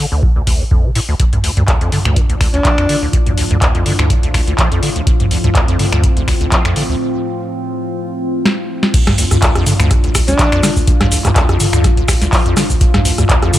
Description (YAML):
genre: acid house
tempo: 124 BPM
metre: 4/4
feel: swing 54% on 16ths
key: D minor pentatonic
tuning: A4 = 440 Hz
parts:
  - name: acid bass, square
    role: riff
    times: 0.0-13.6 s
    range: C2 to F3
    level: -17 LUFS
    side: equal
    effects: tube saturation, ensemble chorus
  - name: electronic kick drum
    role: drums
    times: 0.2-13.4 s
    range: none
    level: -14 LUFS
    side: equal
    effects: small room ambience
  - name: booming analog drum machine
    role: drums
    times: 0.5-13.6 s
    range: crash cymbal, finger snaps, handclaps, hi-hat, rim click, shaker, snare drum, toms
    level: -16 LUFS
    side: equal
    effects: small room ambience
  - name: warbly tape-like pad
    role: sustained chords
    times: 1.2-13.6 s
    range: A2 to F4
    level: -21 LUFS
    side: left 1 dB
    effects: chorus, built-in reverb, sidechain pumping
  - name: breathy alto saxophone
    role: melody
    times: 2.5-3.0, 10.3-10.8 s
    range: D4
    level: -20 LUFS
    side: equal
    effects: dub echo
room: light reverb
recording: none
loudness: -11 LUFS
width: side -14 dB against mid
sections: 0.0-8.9 A section; 8.9-13.6 B section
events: filter sweep on acid bass 0.0-8.9; break 7.0-8.9; drum fill 8.5-8.9; drop 8.9-13.6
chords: 0.0 Dm